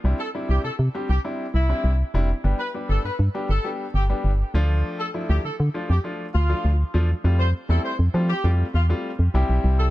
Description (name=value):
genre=dance-pop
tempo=100 BPM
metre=4/4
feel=straight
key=C major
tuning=A4 = 439 Hz
part: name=clear grand piano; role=accompaniment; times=0.0-9.9 s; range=F3 to G4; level=-29 LUFS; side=left 2 dB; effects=none
part: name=organ-like FM bass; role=bass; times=0.0-9.9 s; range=F1 to F3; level=-19 LUFS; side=equal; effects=none
part: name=warm horn section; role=melody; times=0.2-9.9 s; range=E4 to C5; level=-30 LUFS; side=left 1 dB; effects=none
room=small room ambience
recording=none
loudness=-20 LUFS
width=side -16 dB against mid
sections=0.0-7.2 A section; 7.2-9.9 B section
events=none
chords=0.0 Cadd9; 2.4 G; 4.5 Dm; 7.2 Fadd9; 9.3 C